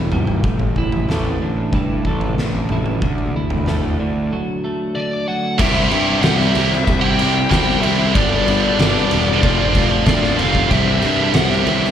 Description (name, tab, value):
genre	quiet-loud alternative rock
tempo	94 BPM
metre	4/4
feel	straight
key	unclear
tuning	A4 = 440 Hz
part	twelve-string electric guitar	arpeggios	0.0-5.6 s	A2 to E4	-23 LUFS	right 1 dB	wide subtle chorus
part	fuzz picked electric bass	bass	0.0-11.9 s	E1 to G2	-20 LUFS	equal	overdrive
part	oversized low-tuned drum kit	drums	0.1-11.9 s	crash cymbal, kick drum, ride cymbal, snare drum, toms	-20 LUFS	equal	none
part	high-gain lead guitar	melody	5.0-11.9 s	D5 to G5	-22 LUFS	left 2 dB	distortion, slapback echo
part	fuzz guitar	riff	5.6-11.9 s	G2 to G4	-22 LUFS	left 12 dB	distortion, slapback echo
part	heavy high-gain guitar	riff	5.6-11.9 s	G2 to G4	-19 LUFS	right 8 dB	distortion
room	small room ambience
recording	live gig heard through the venue's PA, recital hall reverb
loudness	-15 LUFS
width	side -9 dB against mid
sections	0.0-5.6 A section; 5.6-11.9 B section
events	none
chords	0.4 Asus4; 3.0 Dadd9; 5.6 C; 8.2 G; 9.4 F; 10.7 C